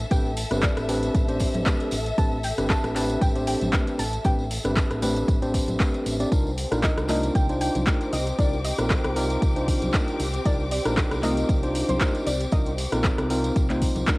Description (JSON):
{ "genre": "deep house", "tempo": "116 BPM", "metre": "4/4", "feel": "swing 54% on 16ths", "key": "unclear", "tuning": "A4 = 438 Hz", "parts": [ { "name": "soft round pluck", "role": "melody", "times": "0.0-14.0 s", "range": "C5 to A5", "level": "-33 LUFS", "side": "equal", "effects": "analog chorus, cassette tape, analog delay" }, { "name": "fingered electric bass with an envelope filter", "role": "bass", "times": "0.0-14.0 s", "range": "G1 to C2", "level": "-29 LUFS", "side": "equal", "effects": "sidechain pumping" }, { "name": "warm symphonic string section", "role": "texture", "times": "0.0-14.2 s", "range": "C4 to D6", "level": "-33 LUFS", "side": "left 1 dB", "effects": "sidechain pumping, cassette tape" }, { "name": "tine electric piano", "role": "stabs", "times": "0.1-14.2 s", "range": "C4 to D5", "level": "-27 LUFS", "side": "equal", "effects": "vintage 12-bit sampler grit, sidechain pumping, cassette tape, analog delay" }, { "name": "deep house drum kit", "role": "drums", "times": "0.1-14.2 s", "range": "handclaps, hi-hat, rim click", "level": "-30 LUFS", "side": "equal", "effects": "overdrive" }, { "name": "electronic kick drum", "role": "drums", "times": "0.1-14.2 s", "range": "none", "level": "-23 LUFS", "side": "equal", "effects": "overdrive" }, { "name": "tambourine", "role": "percussion", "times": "0.1-14.2 s", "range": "none", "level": "-38 LUFS", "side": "right 1 dB", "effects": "none" }, { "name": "congas", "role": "percussion", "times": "1.5-14.2 s", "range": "none", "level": "-33 LUFS", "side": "left 1 dB", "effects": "sidechain pumping on perc" } ], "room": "digital ambience", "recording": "home recording on cassette, vinyl crackle", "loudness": "-21 LUFS", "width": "side -23 dB against mid", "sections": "0.0-14.2 A section", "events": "none", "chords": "0.0 Am11; 6.3 Cm11", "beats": "| 0.11 0.63 1.15 1.66 | 2.18 2.70 3.21 3.73 | 4.25 4.77 5.28 5.80 | 6.32 6.83 7.35 7.87 | 8.39 8.90 9.42 9.94 | 10.46 10.97 11.49 12.01 | 12.53 13.04 13.56 14.08" }